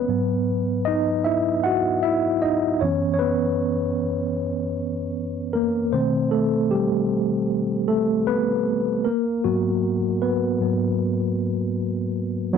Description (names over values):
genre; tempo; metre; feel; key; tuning
R&B; 77 BPM; 4/4; swing 58% on 16ths; unclear; A4 = 440 Hz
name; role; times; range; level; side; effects
mellow tine electric piano; solo; 0.0-12.6 s; F#2 to F#5; -20 LUFS; equal; medium stereo tremolo
room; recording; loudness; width
moderate studio reverb, RT60 0.6 s; dark, warm production; -20 LUFS; side -7 dB against mid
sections
0.0-12.6 A section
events
tine electric piano solo 0.0-12.6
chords
0.1 G#m7; 2.8 F#7sus4; 5.9 B7b9; 9.0 G#m9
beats
| 0.09 0.87 1.65 2.42 | 3.20 3.98 4.76 5.54 | 6.32 7.10 7.88 8.66 | 9.44 10.22 11.00 11.78 | 12.55